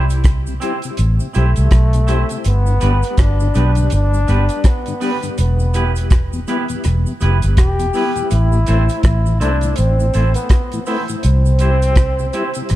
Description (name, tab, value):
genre	roots reggae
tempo	82 BPM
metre	4/4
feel	swing 60% on 16ths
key	A minor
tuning	A4 = 440 Hz
part	warm trombone	melody	0.0-12.8 s	G3 to G4	-22 LUFS	left 1 dB	tape echo
part	clean electric guitar	accompaniment	0.0-12.5 s	B3 to C5	-25 LUFS	right 3 dB	spring reverb, tape echo
part	vintage muted fingered electric bass	bass	0.0-12.8 s	E1 to C2	-14 LUFS	equal	none
part	damped 70s drum kit	drums	0.1-12.8 s	hi-hat, kick drum, rim click	-15 LUFS	equal	none
part	cabasa	percussion	0.1-12.8 s	none	-37 LUFS	right 4 dB	none
part	mellow tonewheel organ	accompaniment	0.5-12.6 s	E2 to E4	-26 LUFS	left 3 dB	chorus vibrato, slow rotary speaker, tape echo
room	little or no reverb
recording	dark, warm production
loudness	-13 LUFS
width	side -15 dB against mid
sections	0.0-12.8 A section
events	none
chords	0.0 C; 2.4 G; 5.4 Em; 8.3 Am; 11.2 C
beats	0.25 0.98 1.71 | 2.44 3.18 3.91 4.64 | 5.38 6.11 6.84 7.57 | 8.31 9.04 9.77 10.50 | 11.23 11.96 12.70